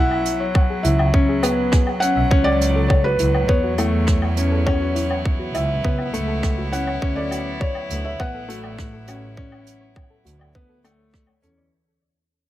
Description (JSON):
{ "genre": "piano and strings electronica", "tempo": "102 BPM", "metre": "4/4", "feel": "straight", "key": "unclear", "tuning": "A4 = 440 Hz", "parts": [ { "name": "felt-muted upright piano", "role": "melody", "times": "0.0-11.1 s", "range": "B4 to F#5", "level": "-25 LUFS", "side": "equal", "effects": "none" }, { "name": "rich string quartet", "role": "sustained chords", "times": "0.0-11.7 s", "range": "F#3 to E4", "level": "-29 LUFS", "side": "equal", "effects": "sidechain pumping" }, { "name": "soft round pluck", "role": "arpeggios", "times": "0.0-11.7 s", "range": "E4 to G#5", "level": "-31 LUFS", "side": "left 2 dB", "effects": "chorus, sidechain pumping, tape echo" }, { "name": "warm grand piano", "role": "riff", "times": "0.0-11.7 s", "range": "A3 to E4", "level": "-24 LUFS", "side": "left 2 dB", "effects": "tape echo" }, { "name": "rich studio double bass section", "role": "bass", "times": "0.0-11.6 s", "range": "A1 to E2", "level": "-23 LUFS", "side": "right 1 dB", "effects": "sidechain pumping" }, { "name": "jazz brush drum kit", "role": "drums", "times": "0.1-11.5 s", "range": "hi-hat, rim click, woodblock", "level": "-30 LUFS", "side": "equal", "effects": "none" }, { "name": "electronic kick drum", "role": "drums", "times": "0.6-11.3 s", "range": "none", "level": "-19 LUFS", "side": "equal", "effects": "overdrive" } ], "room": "light reverb, studio reverb", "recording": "none", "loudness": "-17 LUFS", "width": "side -14 dB against mid", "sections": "0.0-11.7 A section", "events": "drop 0.0-11.7; fade-out 2.3-11.7", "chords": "0.0 C#m; 2.3 F#m7/C#; 7.0 Dmaj7" }